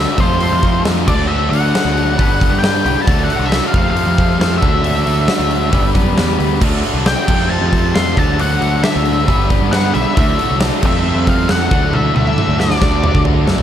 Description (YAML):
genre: classic rock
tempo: 135 BPM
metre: 4/4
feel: straight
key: unclear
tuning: A4 = 438 Hz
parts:
  - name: octave-fuzz lead guitar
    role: melody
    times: 0.0-13.2 s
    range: C5 to C6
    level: -20 LUFS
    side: left 2 dB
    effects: wah, distortion
  - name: mellow tonewheel organ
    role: sustained chords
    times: 0.0-13.6 s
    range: F#3 to F5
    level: -27 LUFS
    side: right 2 dB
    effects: none
  - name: distorted electric guitar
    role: riff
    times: 0.0-13.6 s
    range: D3 to B4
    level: -23 LUFS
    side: left 10 dB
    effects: overdrive
  - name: distorted electric guitar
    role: riff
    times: 0.0-13.6 s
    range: F2 to D4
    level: -24 LUFS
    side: right 11 dB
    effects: distortion
  - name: tight distorted guitar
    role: riff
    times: 0.0-13.6 s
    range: F2 to D4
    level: -23 LUFS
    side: equal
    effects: distortion
  - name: growling picked electric bass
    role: bass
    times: 0.0-13.6 s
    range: G1 to D3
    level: -18 LUFS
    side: equal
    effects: overdrive
  - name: huge arena drum kit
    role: drums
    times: 0.2-13.6 s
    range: crash cymbal, hi-hat, kick drum, snare drum, toms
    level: -16 LUFS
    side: equal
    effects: none
room: light reverb, studio ambience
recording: none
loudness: -12 LUFS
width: side -10 dB against mid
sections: 0.0-13.6 A section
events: drum fill 11.9-13.6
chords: 0.2 Fadd9; 1.1 Dadd9; 2.2 G; 3.1 Dadd9; 3.7 Fadd9; 4.6 Dadd9; 5.7 G; 6.6 Dadd9; 7.3 Fadd9; 8.2 Dadd9; 9.3 G; 10.2 Dadd9; 10.8 Fadd9; 11.7 Dadd9; 12.8 D